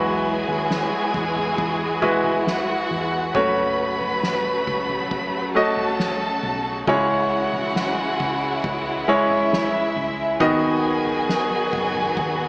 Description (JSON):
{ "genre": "pop ballad", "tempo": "68 BPM", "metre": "4/4", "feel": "straight", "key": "E major", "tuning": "A4 = 442 Hz", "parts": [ { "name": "warm studio violin section", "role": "second line", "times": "0.0-12.5 s", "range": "E4 to B5", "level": "-28 LUFS", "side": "equal", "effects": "none" }, { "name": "clear concert grand piano", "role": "accompaniment", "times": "0.0-12.5 s", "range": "C#3 to D#5", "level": "-25 LUFS", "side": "equal", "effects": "none" }, { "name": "warm studio string section", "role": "sustained chords", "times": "0.0-12.5 s", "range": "C#3 to F#4", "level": "-30 LUFS", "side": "equal", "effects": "none" }, { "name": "hollow-body short-scale fingered electric bass", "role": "bass", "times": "0.0-12.5 s", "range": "F#1 to E2", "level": "-37 LUFS", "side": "equal", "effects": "none" }, { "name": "soft-mallet drum kit", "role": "drums", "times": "0.5-12.4 s", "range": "kick drum, snare drum, toms", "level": "-34 LUFS", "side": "equal", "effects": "none" } ], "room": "light reverb, small room reverb", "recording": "small speaker sound", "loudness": "-22 LUFS", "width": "mono", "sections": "0.0-12.5 A section", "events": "none", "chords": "0.0 Eadd9; 3.3 F#m; 6.9 C#m; 10.4 B", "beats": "0.70 1.58 2.46 | 3.35 4.23 5.11 5.99 | 6.88 7.76 8.64 9.52 | 10.40 11.29 12.17" }